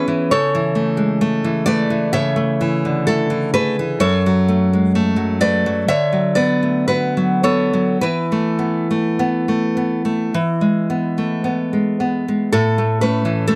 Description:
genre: romantic piece for solo classical guitar.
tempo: 51-67 BPM.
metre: 4/4.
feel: rubato.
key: A major.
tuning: A4 = 444 Hz.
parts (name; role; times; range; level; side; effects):
nylon-string guitar; solo; 0.0-13.6 s; F#2 to E5; -18 LUFS; equal; none.
room: light reverb.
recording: none.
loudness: -18 LUFS.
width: mono.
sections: 0.0-12.5 A section; 12.5-13.6 B section.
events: none.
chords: 0.3 A/C#; 4.0 F#m; 5.9 Bm/D; 8.0 Esus4; 10.3 E; 12.5 A.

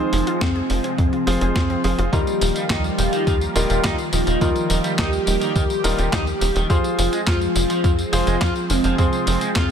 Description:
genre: synthwave.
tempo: 105 BPM.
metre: 4/4.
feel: straight.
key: F minor.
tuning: A4 = 441 Hz.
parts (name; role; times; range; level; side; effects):
soft octave-layered synth lead; melody; 0.0-9.7 s; C4 to G4; -24 LUFS; left 1 dB; chorus, phaser, ping-pong delay.
analog string pad; sustained chords; 0.0-9.7 s; Eb3 to G4; -26 LUFS; right 1 dB; ensemble chorus, phaser, sidechain pumping.
wide unison pluck; arpeggios; 0.0-2.1 s; F3 to Ab4; -31 LUFS; left 3 dB; ping-pong delay.
warm concert grand piano; stabs; 0.0-9.7 s; G3 to C5; -27 LUFS; equal; ping-pong delay.
tight sequencer bass; bass; 0.1-9.7 s; Eb1 to F2; -22 LUFS; equal; sidechain pumping.
clean 12-bit digital drum machine; drums; 0.1-9.7 s; handclaps, hi-hat, snare drum, tambourine; -27 LUFS; equal; none.
electronic kick drum; drums; 0.4-9.7 s; none; -22 LUFS; equal; none.
electric guitar at the edge of break-up; riff; 2.1-9.7 s; Eb3 to F4; -29 LUFS; right 1 dB; lush chorus, ping-pong delay.
room: light reverb.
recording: none.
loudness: -17 LUFS.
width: side -8 dB against mid.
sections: 0.0-9.7 A section.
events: none.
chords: 0.0 Fm; 2.1 Ebadd9; 6.7 Fm.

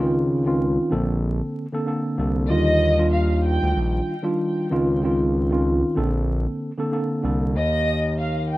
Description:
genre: hip hop, boom-bap hip-hop.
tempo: 95 BPM.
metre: 4/4.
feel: swing 57% on 16ths.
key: Eb lydian.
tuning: A4 = 440 Hz.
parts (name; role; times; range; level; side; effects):
mellow tine electric piano; accompaniment; 0.0-7.5 s; D3 to A4; -22 LUFS; equal; medium stereo tremolo, cassette tape, high-pass filter, low-pass filter, plate reverb.
smooth gliding synth bass; bass; 0.0-8.6 s; Bb1 to Eb2; -22 LUFS; equal; none.
warm chamber violin section; melody; 2.5-8.6 s; Eb5 to G5; -24 LUFS; equal; high-pass filter, low-pass filter, digital delay.
room: moderate studio ambience, RT60 0.5 s.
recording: rough home demo mix, vinyl crackle.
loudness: -19 LUFS.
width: side -17 dB against mid.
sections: 0.0-8.6 A section.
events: none.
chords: 0.0 Dbmaj9; 0.9 Bbmaj9; 2.5 Ebmaj9; 4.7 Dbmaj9; 6.0 Bbmaj9; 7.6 Eb5.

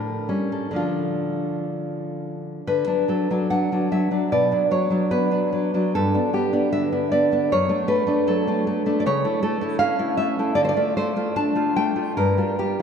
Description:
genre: romantic piece for solo classical guitar.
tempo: 60-80 BPM.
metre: 2/4.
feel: rubato.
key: D major, D minor from 9.1 s.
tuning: A4 = 440 Hz.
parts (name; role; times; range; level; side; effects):
nylon-string guitar; solo; 0.0-12.8 s; F#2 to A5; -20 LUFS; equal; none.
room: wet cathedral reverb, RT60 4.7 s.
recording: in a vast, echoing space.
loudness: -20 LUFS.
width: side -7 dB against mid.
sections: 0.0-2.7 A section; 2.7-12.8 B section.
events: none.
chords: 0.0 A7; 0.8 Dm; 2.7 D; 4.3 Bm; 6.0 G; 7.5 D/F#; 9.1 A/C#; 10.6 Dm; 12.2 G5.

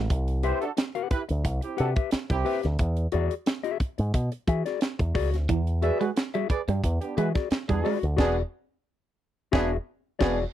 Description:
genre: funk.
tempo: 89 BPM.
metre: 4/4.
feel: straight.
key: E mixolydian.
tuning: A4 = 440 Hz.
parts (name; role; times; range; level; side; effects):
clean electric guitar; riff; 0.0, 5.5-8.0 s; E3 to G#3; -30 LUFS; right 7 dB; none.
picked electric bass with an envelope filter; bass; 0.0-10.4 s; E1 to E3; -26 LUFS; equal; none.
tight funk drum kit; drums; 0.1-10.4 s; crash cymbal, hi-hat, kick drum, snare drum; -27 LUFS; right 1 dB; none.
mellow horn section; second line; 0.4-10.4 s; B3 to E5; -29 LUFS; right 6 dB; none.
mellow electric guitar; accompaniment; 0.4-10.4 s; F#4 to F#5; -29 LUFS; left 10 dB; vibrato effect.
room: little or no reverb.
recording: dry, close 1970s-style studio recording.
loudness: -24 LUFS.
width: side -12 dB against mid.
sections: 0.1-10.5 A section.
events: band accent 8.2-10.5.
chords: 0.1 Cmaj7; 2.8 E9.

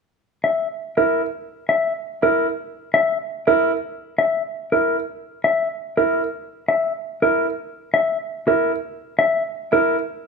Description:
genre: classical, minimalist pattern music.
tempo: free time.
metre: none.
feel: none.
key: unclear.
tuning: A4 = 438 Hz.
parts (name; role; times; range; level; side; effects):
mellow electric guitar; melody; 0.4-10.0 s; Bb4 to E5; -19 LUFS; left 3 dB; none.
bright concert grand piano; arpeggios; 1.0-10.0 s; E4; -21 LUFS; right 13 dB; none.
room: moderate large studio reverb, RT60 1.3 s.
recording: minimal, uncompressed stereo recording.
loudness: -19 LUFS.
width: side -4 dB against mid.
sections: 0.4-10.3 A section.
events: none.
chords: none.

